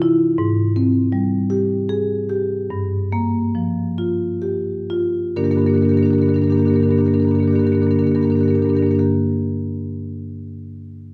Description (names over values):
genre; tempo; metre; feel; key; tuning
classical, contemporary piece for solo marimba; 42-55 BPM (dotted quarters); 6/8; straight; G minor; A4 = 439 Hz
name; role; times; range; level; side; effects
marimba with medium mallets; solo; 0.0-9.1 s; G2 to Bb4; -19 LUFS; equal; none
room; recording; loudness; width
moderate recital hall reverb, RT60 1.3 s; none; -19 LUFS; mono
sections
0.0-5.4 A section; 5.4-10.8 B section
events
slowing down 0.0-5.4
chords
0.4 Abmaj7; 2.7 Gm7; 5.4 Gm